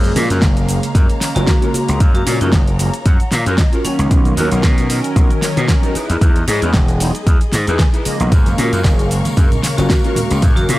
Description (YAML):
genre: nu-disco, nu disco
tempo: 114 BPM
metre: 4/4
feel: swing 55% on 16ths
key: F# major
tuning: A4 = 440 Hz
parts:
  - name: mellow synth brass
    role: accompaniment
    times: 0.0-10.8 s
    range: C#3 to A#4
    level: -22 LUFS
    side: equal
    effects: chorus, phaser
  - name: rich studio string section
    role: sustained chords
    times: 0.0-10.8 s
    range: G#4 to C#6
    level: -29 LUFS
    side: left 3 dB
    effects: sidechain pumping
  - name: gritty slap bass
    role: bass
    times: 0.0-10.8 s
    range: E1 to B2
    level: -17 LUFS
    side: equal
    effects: overdrive, tube saturation
  - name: pop drum kit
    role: drums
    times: 0.0-10.8 s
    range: hi-hat, shaker, snare drum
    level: -22 LUFS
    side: equal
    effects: studio reverb
  - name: mellow electric guitar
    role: riff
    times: 0.2-10.8 s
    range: B3 to A#5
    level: -23 LUFS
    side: left 1 dB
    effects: ensemble chorus
  - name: electronic kick drum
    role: drums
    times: 0.4-10.5 s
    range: none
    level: -14 LUFS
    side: equal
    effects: studio reverb
  - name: vibraphone with hard mallets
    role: melody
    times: 1.4-4.1, 9.8-10.7 s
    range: C#4 to F#4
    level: -25 LUFS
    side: equal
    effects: tape echo
  - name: congas and tambourine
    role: percussion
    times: 8.3-10.7 s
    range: none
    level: -24 LUFS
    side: right 1 dB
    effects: none
room: little or no reverb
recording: dry, gritty hardware recording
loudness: -12 LUFS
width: side -17 dB against mid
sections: 0.0-10.8 A section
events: clean electric guitar fill 2.5-4.1, 7.5-8.3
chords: 0.0 F#maj7; 4.1 Bmaj7; 6.0 Emaj7; 8.3 F#maj7